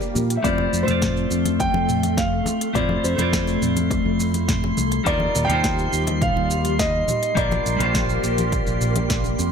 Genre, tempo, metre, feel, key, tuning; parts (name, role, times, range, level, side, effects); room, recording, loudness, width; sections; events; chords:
sunset chillout; 104 BPM; 4/4; straight; F major; A4 = 440 Hz
dark baby grand piano; melody; 0.0-9.3 s; C5 to G5; -26 LUFS; equal; ping-pong delay
clean electric guitar; accompaniment; 0.0-9.5 s; G3 to D5; -25 LUFS; moving between left 5 dB and right 3 dB; auto-pan
soft string machine; sustained chords; 0.0-9.5 s; G3 to G4; -29 LUFS; equal; phaser, ensemble chorus
smooth R&B drum kit; drums; 0.0-9.5 s; hi-hat, shaker, snare drum, toms; -27 LUFS; equal; overdrive
congas; percussion; 0.0-9.5 s; -32 LUFS; left 4 dB
fingered electric bass; bass; 0.2-9.5 s; Bb1 to Bb2; -24 LUFS; equal
electronic kick drum; drums; 0.4-9.2 s; -27 LUFS; equal; overdrive
drifting glass-harmonics texture; texture; 1.2-9.5 s; C6; -32 LUFS; right 4 dB; chorus, built-in reverb
light reverb; -18 LUFS; side -6 dB against mid
0.0-9.5 A section
0.4 Fmaj7; 5.1 Ebmaj9; 7.4 Bb6